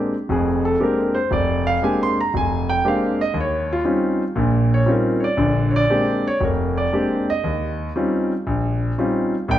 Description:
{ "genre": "solo jazz", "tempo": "118 BPM", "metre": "4/4", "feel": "swing 68% on 8ths", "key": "Bb mixolydian", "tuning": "A4 = 439 Hz", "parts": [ { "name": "warm concert grand piano", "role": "solo", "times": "0.0-9.6 s", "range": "F1 to C6", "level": "-18 LUFS", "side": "equal", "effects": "none" } ], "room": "wet recital hall reverb, RT60 1.7 s", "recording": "recorded in a church or concert hall", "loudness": "-18 LUFS", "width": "side -12 dB against mid", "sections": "0.0-9.6 A section", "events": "grand piano solo 0.0-9.6", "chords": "0.0 Bb13; 3.3 Eb13; 5.4 Bb13; 7.4 Eb13" }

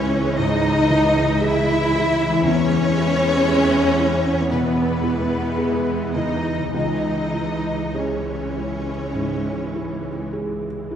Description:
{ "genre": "cinematic, emotional film score for orchestra", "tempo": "49-59 BPM", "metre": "4/4", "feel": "rubato", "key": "C# minor", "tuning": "A4 = 440 Hz", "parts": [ { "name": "rich symphonic violin section", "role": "melody", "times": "0.0-10.3 s", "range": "B4 to E5", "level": "-27 LUFS", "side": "left 4 dB", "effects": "none" }, { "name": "warm symphonic violin section", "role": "second line", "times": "0.0-10.3 s", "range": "B3 to E4", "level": "-25 LUFS", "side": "left 1 dB", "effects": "none" }, { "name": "felt-muted upright piano", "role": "accompaniment", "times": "0.0-11.0 s", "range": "C#2 to G#4", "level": "-26 LUFS", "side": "equal", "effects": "none" }, { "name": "warm symphonic viola section", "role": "accompaniment", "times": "0.0-11.0 s", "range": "E3 to G#3", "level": "-28 LUFS", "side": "equal", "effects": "none" }, { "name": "clear studio cello section", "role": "bass", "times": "0.0-10.3 s", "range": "B3 to E4", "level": "-25 LUFS", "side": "right 2 dB", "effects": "none" }, { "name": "rich symphonic double bass section", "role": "bass", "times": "0.0-11.0 s", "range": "C#2 to E2", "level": "-27 LUFS", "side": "right 1 dB", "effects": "none" }, { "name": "concert harp", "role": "arpeggios", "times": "2.3-10.6 s", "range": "C#3 to G#4", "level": "-27 LUFS", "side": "left 6 dB", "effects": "none" } ], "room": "wet scoring stage reverb, RT60 1.9 s", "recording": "heard from further back in the room", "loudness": "-18 LUFS", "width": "side -9 dB against mid", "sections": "0.0-11.0 A section", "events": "none", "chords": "0.0 C#madd9; 2.5 E; 6.7 C#m" }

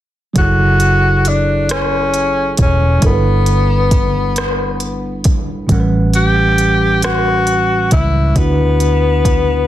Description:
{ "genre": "slow six-eight R&B", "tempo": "45 BPM (dotted quarters)", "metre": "6/8", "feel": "straight", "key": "F# phrygian", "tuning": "A4 = 439 Hz", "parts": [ { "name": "tine electric piano", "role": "accompaniment", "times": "0.3-9.7 s", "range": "A2 to F#5", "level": "-19 LUFS", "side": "right 2 dB", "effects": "phaser" }, { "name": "warm tenor saxophone", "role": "melody", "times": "0.4-9.7 s", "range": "B3 to G4", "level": "-16 LUFS", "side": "left 2 dB", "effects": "tape echo" }, { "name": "vintage muted fingered electric bass", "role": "bass", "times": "0.4-9.7 s", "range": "E1 to D2", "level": "-16 LUFS", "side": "equal", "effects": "none" }, { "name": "smooth R&B drum kit", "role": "drums", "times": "0.4-9.5 s", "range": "hi-hat, kick drum, rim click", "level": "-17 LUFS", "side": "equal", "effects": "none" } ], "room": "light reverb", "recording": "dense, heavily limited modern master", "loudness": "-11 LUFS", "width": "side -13 dB against mid", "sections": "0.4-9.7 A section", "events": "none", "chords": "0.4 F#m9; 3.0 G69; 5.7 A13; 8.4 D6" }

